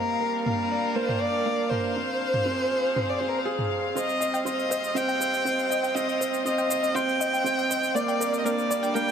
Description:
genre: piano and strings electronica.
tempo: 120 BPM.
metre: 4/4.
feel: straight.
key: C minor.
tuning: A4 = 441 Hz.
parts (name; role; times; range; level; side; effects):
warm violin; melody; 0.0-9.1 s; Bb4 to G5; -27 LUFS; left 1 dB; shimmer reverb.
dark studio string section; sustained chords; 0.0-9.1 s; C3 to F5; -32 LUFS; left 1 dB; shimmer reverb.
felt-muted upright piano; riff; 0.0-9.1 s; Bb3 to F5; -28 LUFS; right 3 dB; shimmer reverb.
electronic toms and shaker; drums; 0.5-9.1 s; none; -34 LUFS; right 1 dB; low-pass filter on toms, small room reverb, low-pass filter on perc.
analog pluck; arpeggios; 4.0-9.1 s; Bb4 to G5; -33 LUFS; left 4 dB; chorus, shimmer reverb, tape echo.
warm sub bass; bass; 4.0-9.1 s; G1 to C2; -52 LUFS; equal; none.
room: moderate huge ambient reverb, RT60 4.6 s.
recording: none.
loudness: -23 LUFS.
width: side -7 dB against mid.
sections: 0.0-4.0 A section; 4.0-9.1 B section.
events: build-up 4.0-9.1.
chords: 0.0 Gm; 2.0 Fm; 4.0 Cm; 8.0 Gm.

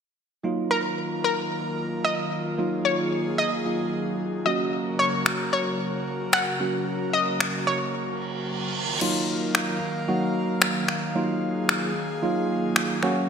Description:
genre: dance-pop.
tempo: 112 BPM.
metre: 4/4.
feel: straight.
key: Eb minor.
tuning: A4 = 440 Hz.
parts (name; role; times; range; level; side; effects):
tine electric piano; accompaniment; 0.4-13.3 s; Gb3 to Gb4; -27 LUFS; right 2 dB; lush chorus.
airy breathy pad; sustained chords; 0.4-13.3 s; Db3 to F5; -30 LUFS; left 1 dB; chorus.
analog pluck; melody; 0.7-8.2 s; Bb4 to Gb5; -26 LUFS; left 2 dB; chorus, ping-pong delay.
pop drum kit; drums; 5.3-13.2 s; crash cymbal, finger snaps; -25 LUFS; left 2 dB; gated reverb.
reverse cymbal; sound effects; 8.2-9.0 s; none; -30 LUFS; right 4 dB; none.
room: wet lush hall reverb, RT60 2.0 s, digital ambience.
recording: bright 1980s-style digital production.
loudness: -23 LUFS.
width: side -7 dB against mid.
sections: 0.4-9.0 A section; 9.0-13.3 B section.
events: break 7.9-9.0; reverse cymbal 8.2-9.0.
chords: 0.4 Ebmadd9; 4.5 Gb; 8.7 Ebmadd9.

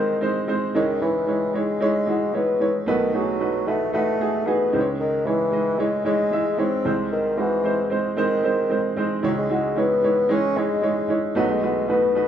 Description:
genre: pop.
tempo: 113 BPM.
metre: 4/4.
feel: straight.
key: C# minor.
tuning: A4 = 440 Hz.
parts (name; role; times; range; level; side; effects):
mellow bassoon; melody; 0.0-12.3 s; D#3 to C#4; -22 LUFS; left 1 dB; none.
warm upright piano; accompaniment; 0.0-12.3 s; B1 to E5; -22 LUFS; right 2 dB; none.
room: moderate large studio reverb, RT60 1.0 s.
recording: band playing live in one room.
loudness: -20 LUFS.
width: side -9 dB against mid.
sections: 0.0-9.2 A section; 9.2-12.3 B section.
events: none.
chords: 0.0 G#/B#; 0.7 C#madd9; 2.9 B7; 4.7 C#madd9; 6.8 G#/B#; 9.2 C#madd9; 11.4 B7.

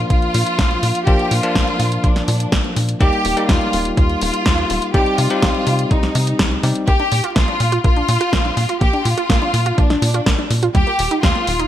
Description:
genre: italo disco.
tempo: 124 BPM.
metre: 4/4.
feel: straight.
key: Bb major.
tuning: A4 = 440 Hz.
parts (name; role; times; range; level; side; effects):
rich studio violin section; melody; 0.0-11.7 s; D4 to G4; -20 LUFS; equal; ping-pong delay.
bell-like tine electric piano; stabs; 0.0-6.8 s; F3 to G4; -22 LUFS; left 2 dB; none.
tight sequencer bass; bass; 0.0-11.7 s; Eb1 to C3; -20 LUFS; equal; none.
electronic kick drum; drums; 0.1-11.3 s; none; -17 LUFS; equal; small room ambience.
house drum kit; drums; 0.1-11.7 s; hi-hat, snare drum; -22 LUFS; equal; small room ambience, gated reverb.
analog pluck; arpeggios; 6.9-11.7 s; G3 to F4; -23 LUFS; right 3 dB; chorus, cassette tape, tape echo.
room: light reverb.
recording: vinyl crackle.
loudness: -14 LUFS.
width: side -11 dB against mid.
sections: 0.0-11.7 A section.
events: none.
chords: 0.0 Bb; 3.0 Eb; 4.9 Cm; 6.9 Bb; 10.7 Eb.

